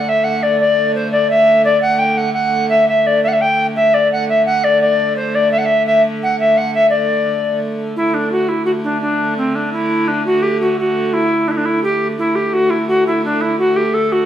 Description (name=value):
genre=medieval dance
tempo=171 BPM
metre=3/4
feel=straight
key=D major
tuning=A4 = 440 Hz
part: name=tenor recorder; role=melody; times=0.0-14.3 s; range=C4 to G5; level=-14 LUFS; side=equal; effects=none
part: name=rich hurdy-gurdy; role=drone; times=0.0-14.3 s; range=D3 to A3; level=-22 LUFS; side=equal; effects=none
room=wet large studio reverb, RT60 1.1 s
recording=band playing live in one room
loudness=-13 LUFS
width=side -10 dB against mid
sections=0.0-8.0 A section; 8.0-14.3 A section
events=none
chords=none